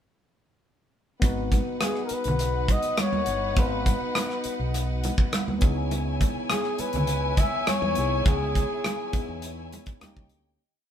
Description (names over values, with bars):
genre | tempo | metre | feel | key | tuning
lush 1970s-style soul | 102 BPM | 4/4 | straight | G# minor | A4 = 440 Hz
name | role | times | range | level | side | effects
warm studio string section | second line | 1.2-10.6 s | D#4 to G#5 | -33 LUFS | left 1 dB | none
barky tine electric piano | accompaniment | 1.2-10.6 s | A#3 to B4 | -34 LUFS | left 1 dB | overdrive
fingered electric bass | bass | 1.2-10.6 s | G1 to E2 | -30 LUFS | equal | none
modern studio drum kit | drums | 1.2-10.4 s | hi-hat, kick drum, rim click | -25 LUFS | equal | none
congas | percussion | 1.2-10.3 s | none | -33 LUFS | right 3 dB | none
mellow flugelhorn | melody | 1.8-9.4 s | G#4 to E5 | -29 LUFS | left 3 dB | none
room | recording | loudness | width
moderate stone room reverb, RT60 1.1 s | band playing live in one room | -23 LUFS | side -9 dB against mid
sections
1.2-10.6 verse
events
fade-out 8.3-10.6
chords
1.2 G#m7; 5.6 C#m7; 10.0 D#7